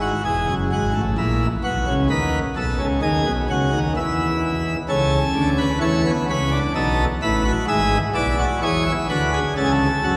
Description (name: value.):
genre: classical, baroque-style 3-part fugue for pipe organ.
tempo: 64 BPM.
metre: 3/4.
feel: straight.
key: A major.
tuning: A4 = 438 Hz.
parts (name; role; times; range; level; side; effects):
pipe organ, plenum; solo; 0.0-10.2 s; E1 to E5; -21 LUFS; equal; none.
room: wet cathedral reverb, RT60 5.9 s.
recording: recorded in a church or concert hall.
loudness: -21 LUFS.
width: mono.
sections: 0.0-10.2 A section.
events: none.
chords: 0.0 E; 1.2 F#7/A#; 2.1 B7; 4.0 N.C.; 4.9 A/C#; 6.8 B7; 7.7 E7/G#; 9.6 A/C#.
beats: 0.25 1.18 | 2.10 3.02 3.96 | 4.88 5.82 6.75 | 7.69 8.62 9.56.